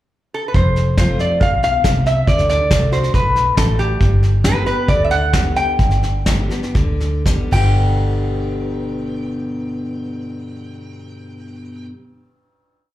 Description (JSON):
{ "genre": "honky-tonk and classic country", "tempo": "111-139 BPM", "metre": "4/4", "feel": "straight", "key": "G major", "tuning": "A4 = 440 Hz", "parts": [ { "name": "lap resonator guitar", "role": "second line", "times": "0.3-11.9 s", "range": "G4 to G5", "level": "-19 LUFS", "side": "equal", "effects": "slapback echo" }, { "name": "picked steel-string acoustic guitar", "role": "accompaniment", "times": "0.5-11.9 s", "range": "F2 to G4", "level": "-23 LUFS", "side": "left 2 dB", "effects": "slapback echo" }, { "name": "vintage muted fingered electric bass", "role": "bass", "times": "0.5-11.9 s", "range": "F1 to D2", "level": "-18 LUFS", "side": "equal", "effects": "none" }, { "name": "soft brush drum kit", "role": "drums", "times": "0.5-7.6 s", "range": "hi-hat, kick drum, ride cymbal, snare drum", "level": "-18 LUFS", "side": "equal", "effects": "none" } ], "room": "light reverb", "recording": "live gig heard through the venue's PA, club reverb", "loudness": "-14 LUFS", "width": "side -14 dB against mid", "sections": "0.0-0.5 pickup bar; 0.5-7.8 interlude; 7.8-12.1 final hit", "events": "resonator guitar played with a steel bar solo 0.5-7.8; slowing down 4.0-7.8; drum fill 7.3-7.8", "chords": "0.0 N.C.; 0.5 F; 2.3 D; 4.0 G" }